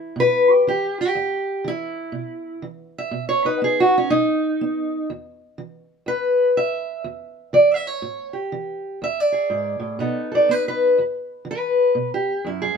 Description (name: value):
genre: acoustic country blues, solo or duo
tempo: 122 BPM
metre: 4/4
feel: swing 63% on 8ths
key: unclear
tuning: A4 = 440 Hz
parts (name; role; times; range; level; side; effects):
- fingerpicked steel-string acoustic guitar; solo; 0.0-12.8 s; E2 to E5; -19 LUFS; equal; none
room: light reverb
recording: minimal, uncompressed stereo recording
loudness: -18 LUFS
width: side -6 dB against mid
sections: 0.0-11.0 A section; 11.0-12.8 A section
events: steel-string acoustic guitar solo 0.0-11.0, 11.0-12.8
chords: 0.0 E5; 3.1 B; 5.1 N.C.; 8.0 A5; 9.0 E7; 10.0 B7; 11.0 E5